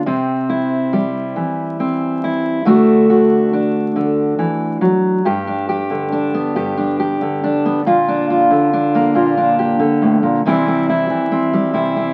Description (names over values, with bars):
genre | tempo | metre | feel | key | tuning
folk, solo fingerstyle acoustic guitar | 46 BPM (dotted quarters) | 6/8 | straight | unclear | A4 = 440 Hz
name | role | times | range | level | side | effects
fingerpicked steel-string acoustic guitar | solo | 0.0-12.1 s | G2 to G4 | -16 LUFS | equal | none
room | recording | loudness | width
wet studio reverb, RT60 0.5 s | very old 78 rpm record, vinyl crackle | -16 LUFS | mono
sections
0.0-5.3 A section; 5.3-12.1 B section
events
none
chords
0.1 C; 2.7 D; 5.3 G; 7.8 Bb; 10.4 C